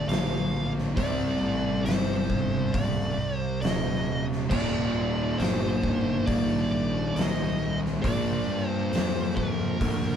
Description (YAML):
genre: stoner and doom metal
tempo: 68 BPM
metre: 4/4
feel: straight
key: unclear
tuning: A4 = 439 Hz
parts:
  - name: fuzz lead guitar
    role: melody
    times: 0.0-10.2 s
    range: Bb4 to F5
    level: -33 LUFS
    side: equal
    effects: distortion
  - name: fuzz guitar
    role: riff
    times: 0.0-10.2 s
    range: D2 to C4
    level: -28 LUFS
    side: equal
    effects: distortion
  - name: fuzz fingered electric bass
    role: bass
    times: 0.0-10.2 s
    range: Eb1 to G2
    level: -32 LUFS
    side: equal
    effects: overdrive
  - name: oversized low-tuned drum kit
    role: drums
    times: 0.1-10.0 s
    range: crash cymbal, hi-hat, kick drum, snare drum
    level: -30 LUFS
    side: left 1 dB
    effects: none
room: light reverb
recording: band playing live in one room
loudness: -24 LUFS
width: side -8 dB against mid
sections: 0.0-10.2 A section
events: none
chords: 0.0 Dm; 1.0 Cm; 4.5 Eb; 8.0 Bb